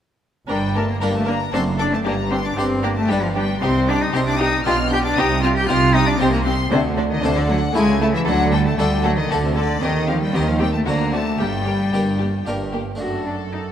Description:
classical, baroque-style concerto movement with solo episodes; 116 BPM; 3/4; straight; G minor; A4 = 440 Hz
rich chamber violin section; melody; 0.5-13.7 s; C5 to G6; -28 LUFS; left 5 dB
warm cello; melody; 0.5-13.6 s; C3 to G4; -21 LUFS; left 2 dB
rich chamber violin section; second line; 0.5-13.7 s; D4 to Bb4; -27 LUFS; left 2 dB
harpsichord; accompaniment; 0.5-13.7 s; F#2 to D5; -28 LUFS; equal
warm chamber viola section; accompaniment; 0.5-13.7 s; A3 to A4; -29 LUFS; right 1 dB
rich chamber double bass section; bass; 0.5-12.9 s; F#1 to Eb2; -25 LUFS; right 2 dB
warm chamber cello section; bass; 0.5-13.7 s; F#2 to Eb3; -24 LUFS; right 2 dB
moderate concert hall reverb, RT60 2.3 s; -17 LUFS; side -9 dB against mid
0.5-13.0 A section
0.5 Gm; 1.5 D/F#; 2.1 G5; 3.6 Cm; 4.6 G/B; 5.2 Cm; 6.7 D5; 7.7 A/C#; 8.3 D5; 9.8 Cm/Eb; 10.9 D7(no3); 11.4 Gm; 13.0 D/F#

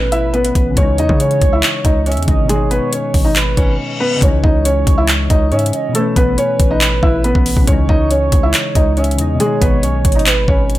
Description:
hip hop, trap; 139 BPM; 4/4; half-time; C# minor; A4 = 440 Hz
gliding portamento lead; second line; 0.0-10.7 s; B4 to E5; -23 LUFS; right 4 dB; chorus, ping-pong delay
soft electric-piano-like synth keys; accompaniment; 0.0-10.8 s; B2 to D#4; -22 LUFS; left 3 dB; chorus, low-pass filter
hard-hitting 808-style bass; bass; 0.0-10.8 s; G#1 to C#3; -17 LUFS; equal
felt-muted upright piano; melody; 0.1-10.8 s; G#3 to E5; -18 LUFS; equal; low-pass filter
trap drum kit; drums; 0.1-10.8 s; handclaps, hi-hat, kick drum; -15 LUFS; equal
reverse cymbal; sound effects; 3.6-4.2 s; -24 LUFS; left 4 dB
little or no reverb; -12 LUFS; side -15 dB against mid
0.0-4.2 A section; 4.2-10.8 B section
reverse cymbal 3.6-4.2; break 3.8-4.2
0.0 Aadd9; 0.8 C#madd9; 2.5 G#m; 4.2 C#madd9; 5.9 Aadd9; 7.7 C#madd9; 9.4 G#m

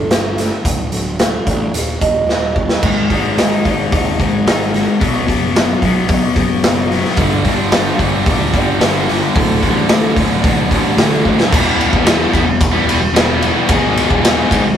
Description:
quiet-loud alternative rock; 110 BPM; 4/4; straight; A4 = 439 Hz
picked old ladder-braced acoustic guitar; arpeggios; 0.0-11.5 s; D2 to A4; -23 LUFS; right 4 dB
fuzz picked electric bass; bass; 0.0-14.7 s; D1 to E2; -22 LUFS; equal; overdrive
raw garage drum kit; drums; 0.1-14.6 s; crash cymbal, hi-hat, kick drum, ride cymbal, snare drum; -15 LUFS; equal
crunchy overdriven guitar; riff; 2.8-14.8 s; D2 to Ab4; -16 LUFS; left 4 dB
scooped high-gain guitar; riff; 7.2-14.7 s; D2 to Ab4; -19 LUFS; right 6 dB; distortion
moderate small room reverb, RT60 0.5 s; rough rehearsal-room recording; -12 LUFS; side -9 dB against mid
0.0-2.8 A section; 2.8-11.5 B section; 11.5-14.8 C section
drum fill 2.3-2.8, 11.2
0.0 Am; 0.7 D5; 1.7 Eb; 2.8 Ab5; 5.0 B5; 7.2 G5; 9.4 D5; 11.5 Em; 13.7 Abm

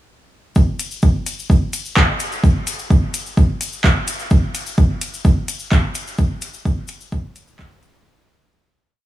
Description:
techno; 128 BPM; 4/4; straight
electronic kick drum; drums; 0.6-7.7 s; -14 LUFS; equal; overdrive, small room ambience
tube shaker; percussion; 0.6-8.0 s; -30 LUFS; left 5 dB
deep house drum kit; drums; 0.8-7.9 s; handclaps, hi-hat; -23 LUFS; equal; overdrive, small room ambience, dub echo
digital ambience; -16 LUFS; side -14 dB against mid
0.6-8.1 groove
fade-out 5.6-8.1

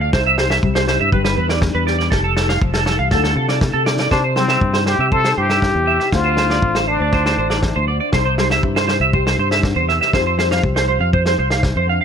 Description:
highlife guitar band; 120 BPM; 4/4; straight; C major; A4 = 440 Hz
nylon-string guitar; accompaniment; 0.0-12.0 s; C3 to C5; -24 LUFS; left 8 dB
electric guitar through a small old amp; arpeggios; 0.0-12.0 s; A4 to F5; -19 LUFS; right 4 dB; analog chorus, tape echo
fingered electric bass; bass; 0.0-12.0 s; F1 to C3; -20 LUFS; equal
warm soul drum kit; drums; 0.1-11.8 s; kick drum, snare drum; -20 LUFS; equal
trumpet with plunger mute; melody; 4.1-7.9 s; C4 to A4; -19 LUFS; left 2 dB
light reverb; -14 LUFS; side -7 dB against mid
0.0-4.1 A section; 4.1-12.0 B section
drum fill 3.1-4.1
0.1 C; 1.1 G; 2.1 Fadd9; 3.1 Dm; 4.1 C; 6.1 Dm7; 8.1 C; 10.1 Fsus2

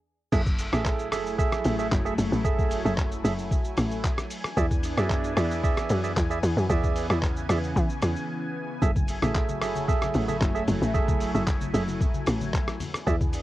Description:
amapiano; 113 BPM; 4/4; straight; F# minor; A4 = 441 Hz
lush unison pad; sustained chords; 0.6-13.4 s; C#3 to G#5; -33 LUFS; left 1 dB; chorus, phaser, sidechain pumping, cassette tape
percussive organ stab; stabs; 0.3-13.2 s; G#4 to E5; -31 LUFS; right 6 dB; chorus, cassette tape, tape echo
tight log drum bass; bass; 0.3-13.4 s; F#1 to E3; -27 LUFS; equal
lo-fi sampler-style drum kit; drums; 0.3-13.4 s; crash cymbal, handclaps, hi-hat, kick drum, rim click, shaker; -27 LUFS; equal; cassette tape
congas; percussion; 8.8-13.3 s; -36 LUFS; left 5 dB
little or no reverb; home recording on cassette; -23 LUFS; side -15 dB against mid
0.3-13.4 A section
stop 0.0-0.3; drop 0.3-13.4; break 8.3-8.8
0.3 F#m9; 4.3 E7; 8.8 F#m9; 12.8 E7

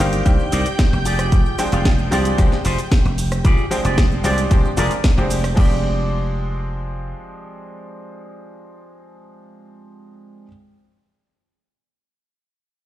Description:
nu-disco, nu disco; 113 BPM; 4/4; straight; F dorian; A4 = 440 Hz
bright concert grand piano; accompaniment; 0.0-10.5 s; Eb3 to G5; -25 LUFS; equal; sidechain pumping, ping-pong delay
string machine, full ensemble; sustained chords; 0.0-5.6 s; G5 to G6; -30 LUFS; right 1 dB; ensemble chorus, sidechain pumping
electric guitar with an envelope filter; riff; 0.0-10.5 s; Eb4 to F5; -26 LUFS; left 1 dB; wide subtle chorus, ping-pong delay
dry thumbed slap bass; bass; 0.0-7.1 s; F1 to C2; -21 LUFS; equal
house drum kit; drums; 0.0-5.7 s; crash cymbal, hi-hat, rim click, shaker, snare drum; -27 LUFS; right 1 dB
cabasa; percussion; 0.0-5.5 s; -41 LUFS; left 1 dB
electronic kick drum; drums; 0.3-5.7 s; -16 LUFS; equal
digital ambience; played on a big sound system in a bare room, stone room reverb; -16 LUFS; side -14 dB against mid
0.0-5.6 A section; 5.6-9.8 B section
drop 0.0-5.6
0.0 Cm9; 1.1 Fm69

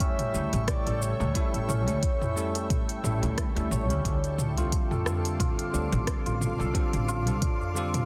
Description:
organic downtempo; 89 BPM; 4/4; swing 56% on 16ths; D minor; A4 = 440 Hz
breathy flute-like synth lead; melody; 0.0-1.7 s; C#5 to E5; -38 LUFS; equal; chorus, tremolo, tape echo
bell-like tine electric piano; accompaniment; 0.0-8.1 s; C#3 to A4; -37 LUFS; equal; sidechain pumping, tape echo
granular cloud pad; sustained chords; 0.0-8.1 s; A4 to D6; -41 LUFS; equal; built-in reverb, sidechain pumping
santur; arpeggios; 0.0-8.1 s; C#4 to C#5; -36 LUFS; equal; tape echo
deep house drum kit; drums; 0.0-8.1 s; hi-hat, rim click, shaker, toms; -35 LUFS; equal; small room ambience
electronic kick drum; drums; 0.0-7.6 s; -31 LUFS; equal; small room ambience
upright bass; bass; 0.3-7.4 s; A1 to D2; -31 LUFS; equal; sidechain pumping
darbuka; percussion; 1.0-8.1 s; -38 LUFS; equal
light reverb; dense, heavily limited modern master; -28 LUFS; mono
0.0-8.1 A section
0.0 A7; 4.0 Dm7

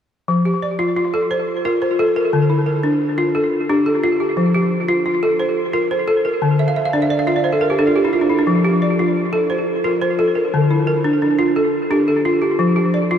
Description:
west african traditional; 117 BPM (dotted quarters); 12/8; straight; F major; A4 = 440 Hz
balafon; arpeggios; 0.3-13.2 s; D3 to F5; -15 LUFS; equal; tape echo
wet huge ambient reverb, RT60 7.1 s; dreamy mix soaked in reverb; -15 LUFS; side -8 dB against mid
0.3-13.2 A section
balafon fill 6.6-8.5
0.3 F; 2.3 Dm; 4.4 F; 6.4 Dm; 8.5 F; 10.5 Dm; 12.6 N.C.

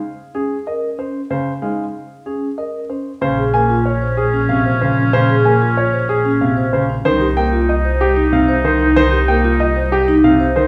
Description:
classical, minimalist pattern music; 188 BPM; 6/4; straight; Bb dorian from 3.2 s; A4 = 439 Hz
warm grand piano; melody; 0.3-10.7 s; G4 to Ab5; -22 LUFS; equal
vibraphone with soft mallets; arpeggios; 0.3-10.6 s; Db4 to C5; -22 LUFS; equal
warm concert grand piano; accompaniment; 1.3-10.7 s; C3 to Bb3; -22 LUFS; equal
clear oboe; second line; 3.2-10.7 s; Db4 to Eb4; -24 LUFS; equal
rich symphonic double bass section; bass; 3.2-10.7 s; Bb1 to C2; -21 LUFS; equal
wet recital hall reverb, RT60 1.6 s; recorded in a church or concert hall; -16 LUFS; mono
0.0-3.2 A section; 3.2-10.7 B section
0.0 Bbm; 3.2 Bbm7; 7.0 Cm

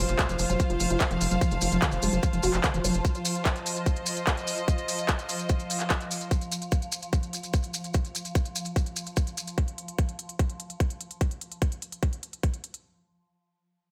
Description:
psychedelic trance; 147 BPM; 4/4; straight; A4 = 440 Hz
swarming drone; sustained chords; 0.8-9.6 s; F3; -40 LUFS; equal; built-in reverb, vintage 12-bit sampler grit, sidechain pumping
round analog bass; bass; 0.0-3.0 s; F1; -32 LUFS; equal
impact; sound effects; 0.0-1.4 s; -42 LUFS; equal
bright symphonic string section; texture; 0.0-6.3 s; F4 to F5; -36 LUFS; equal; sidechain pumping
techno drum kit; drums; 0.1-12.8 s; handclaps, hi-hat; -34 LUFS; equal; overdrive, studio reverb
maracas; percussion; 0.1-9.6 s; -37 LUFS; equal
electronic kick drum; drums; 0.2-12.5 s; -28 LUFS; equal; studio reverb
woody wave-folded pluck; riff; 0.3-2.9 s; Eb3 to Gb4; -32 LUFS; equal; chorus, sidechain pumping, dub echo
light reverb, digital ambience; -28 LUFS; mono
0.0-12.8 A section
impact 0.0-1.4; filter sweep on synth arpeggio sound 0.0-3.0
0.0 F5

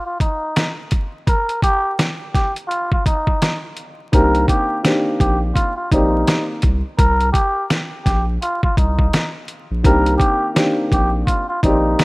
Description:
hip hop, boom-bap hip-hop; 84 BPM; 4/4; swing 60% on 16ths; C minor; A4 = 440 Hz
trumpet with cup mute; melody; 0.0-12.0 s; Eb4 to Bb4; -21 LUFS; equal; high-pass filter, low-pass filter
boom bap sampler-style drum kit; drums; 0.2-12.0 s; hi-hat, kick drum, snare drum; -18 LUFS; equal
dark upright piano; accompaniment; 4.1-12.0 s; Eb3 to D5; -19 LUFS; left 1 dB; cassette tape, high-pass filter, low-pass filter
saturated sub bass; bass; 4.1-12.0 s; Bb1 to C2; -19 LUFS; equal
small room ambience; rough home demo mix, vinyl crackle; -15 LUFS; side -26 dB against mid
0.0-12.0 A section
break 0.0-4.1
0.0 N.C.; 4.1 Cm7; 7.0 Bbsus2; 9.8 Cm7

